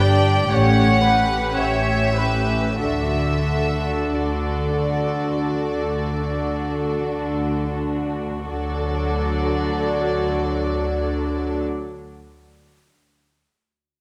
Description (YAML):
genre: classical, slow romantic movement for string orchestra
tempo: 38-60 BPM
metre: 4/4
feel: rubato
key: D major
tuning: A4 = 439 Hz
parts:
  - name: clear studio violin section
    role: melody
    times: 0.0-11.6 s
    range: D5 to G5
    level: -28 LUFS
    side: equal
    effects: none
  - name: dark studio violin section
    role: second line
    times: 0.0-11.6 s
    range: C#4 to A4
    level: -28 LUFS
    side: equal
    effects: none
  - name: warm studio viola section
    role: accompaniment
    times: 0.0-11.6 s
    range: F#3 to D5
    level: -29 LUFS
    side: equal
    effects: none
  - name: rich studio double bass section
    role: bass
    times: 0.0-11.6 s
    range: G1 to D2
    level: -27 LUFS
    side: equal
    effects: none
  - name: warm studio cello section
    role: bass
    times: 0.0-11.6 s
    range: G2 to D3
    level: -29 LUFS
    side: equal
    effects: none
room: wet scoring stage reverb, RT60 1.8 s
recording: none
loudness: -21 LUFS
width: mono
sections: 0.0-8.5 A section; 8.5-14.0 B section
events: slowing down 0.0-8.5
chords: 0.5 A6; 2.8 D